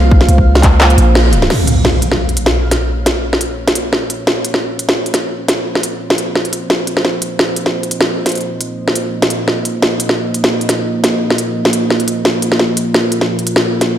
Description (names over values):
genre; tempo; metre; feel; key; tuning
half-time drum and bass; 173 BPM; 4/4; swing 55% on 16ths, half-time; Bb minor; A4 = 440 Hz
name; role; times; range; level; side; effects
dark analog pad; sustained chords; 0.0-14.0 s; Bb3 to F5; -19 LUFS; right 1 dB; chorus, sidechain pumping
long sustained 808-style bass; bass; 0.0-1.5 s; Bb1 to Db2; -10 LUFS; equal; none
backwards swelling texture; texture; 0.0-1.5 s; F5; -30 LUFS; left 1 dB; none
electronic kick drum; drums; 0.1-0.7 s; none; -10 LUFS; equal; overdrive
organic electronic drum kit; drums; 0.2-13.9 s; crash cymbal, handclaps, hi-hat, snare drum; -14 LUFS; equal; overdrive
impact; sound effects; 1.5-2.9 s; none; -16 LUFS; equal; none
room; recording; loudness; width
light reverb; none; -12 LUFS; side -10 dB against mid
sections
0.0-1.5 A section; 1.5-14.0 B section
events
kick drops out 0.8-1.5; band accent 1.2; impact 1.5-2.9; filter sweep on analog synth pad 1.5-14.0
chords
0.0 Bbm